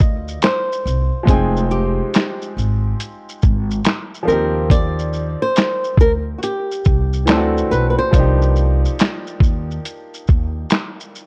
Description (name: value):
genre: lo-fi hip hop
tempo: 70 BPM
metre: 4/4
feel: swing 65% on 16ths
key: C minor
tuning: A4 = 440 Hz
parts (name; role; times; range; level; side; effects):
- flamenco guitar; melody; 0.0-8.8 s; F#4 to Eb5; -23 LUFS; equal; none
- clear upright piano; accompaniment; 0.0-11.3 s; E3 to G5; -26 LUFS; equal; cassette tape
- upright bass; bass; 0.0-10.6 s; F1 to Eb2; -22 LUFS; equal; none
- lo-fi sampler-style drum kit; drums; 0.0-11.3 s; handclaps, hi-hat, kick drum, shaker, snare drum; -18 LUFS; equal; none
room: studio reverb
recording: worn, warbling old tape, cassette tape, warbly pitch drift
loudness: -18 LUFS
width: mono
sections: 0.0-11.3 A section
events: none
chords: 0.0 Cm11; 1.3 Fm9; 4.3 Eb69; 7.3 D7; 8.1 Cm11